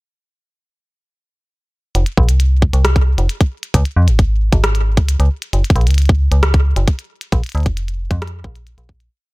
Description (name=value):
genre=IDM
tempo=134 BPM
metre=4/4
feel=straight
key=unclear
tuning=A4 = 440 Hz
part: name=metallic FM bass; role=bass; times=1.9-9.1 s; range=F1 to F2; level=-14 LUFS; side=equal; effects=none
part: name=glitchy drum kit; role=drums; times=1.9-9.1 s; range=hi-hat, rim click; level=-22 LUFS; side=equal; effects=digital delay
part: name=electronic kick drum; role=drums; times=2.2-9.0 s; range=none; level=-14 LUFS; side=equal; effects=none
room=little or no reverb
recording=none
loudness=-13 LUFS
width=side -24 dB against mid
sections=1.9-9.1 groove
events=fade-out 6.7-9.1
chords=none